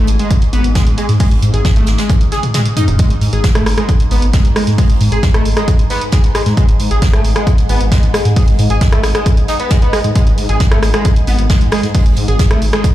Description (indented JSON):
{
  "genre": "driving peak-time techno",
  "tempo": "134 BPM",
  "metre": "4/4",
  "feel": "straight",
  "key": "G# phrygian",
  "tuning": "A4 = 439 Hz",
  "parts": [
    { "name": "overdriven synth lead", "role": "riff", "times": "0.0-12.8 s", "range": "G#3 to G#4", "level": "-20 LUFS", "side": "left 1 dB", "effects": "distortion, ensemble chorus, sidechain pumping, tape echo" },
    { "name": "dark detuned saw bass", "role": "bass", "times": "0.0-12.7 s", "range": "D#1 to G#2", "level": "-14 LUFS", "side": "equal", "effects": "sidechain pumping" },
    { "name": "overtone-sweeping drone", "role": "drone", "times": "0.0-12.9 s", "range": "G#2", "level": "-24 LUFS", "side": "right 2 dB", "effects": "chorus, built-in reverb, sidechain pumping" },
    { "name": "jazz brush drum kit", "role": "drums", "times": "0.1-12.9 s", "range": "hi-hat, snare drum", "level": "-28 LUFS", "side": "right 2 dB", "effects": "sidechain pumping on hats, high-pass filter on hats, high-pass filter on snare, high-pass filter on room" },
    { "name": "punchy analog drum machine", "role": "drums", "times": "0.1-12.9 s", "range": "hi-hat, rim click, toms", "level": "-20 LUFS", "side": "equal", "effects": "none" },
    { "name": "electronic kick drum", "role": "drums", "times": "0.3-12.9 s", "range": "none", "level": "-12 LUFS", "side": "equal", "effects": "none" }
  ],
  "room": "digital ambience",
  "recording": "played on a big sound system in a bare room, large studio reverb",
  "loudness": "-10 LUFS",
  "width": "side -14 dB against mid",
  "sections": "0.0-12.9 A section",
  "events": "drum fill 2.1-3.0; kick drops out 2.5-3.0",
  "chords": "none"
}